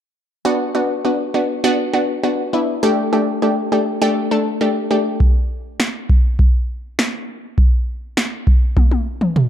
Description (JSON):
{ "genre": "synth-pop", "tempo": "101 BPM", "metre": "4/4", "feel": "straight", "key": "B minor", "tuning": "A4 = 439 Hz", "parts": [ { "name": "analog pluck", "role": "accompaniment", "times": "0.5-5.2 s", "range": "A3 to A4", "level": "-16 LUFS", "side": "left 1 dB", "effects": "chorus" }, { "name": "electro analog drum machine", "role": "drums", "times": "5.2-9.5 s", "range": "kick drum, snare drum, toms", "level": "-14 LUFS", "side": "equal", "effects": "none" } ], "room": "moderate plate reverb, RT60 1.6 s", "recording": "dark, warm production", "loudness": "-16 LUFS", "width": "side -10 dB against mid", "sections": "0.5-9.5 A section", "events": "drum fill 8.8-9.5", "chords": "0.5 Bm; 2.8 Gsus2; 5.2 N.C.", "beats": "| 0.45 1.04 1.64 2.23 | 2.83 3.42 4.02 4.61 | 5.20 5.80 6.39 6.99 | 7.58 8.17 8.77 9.36" }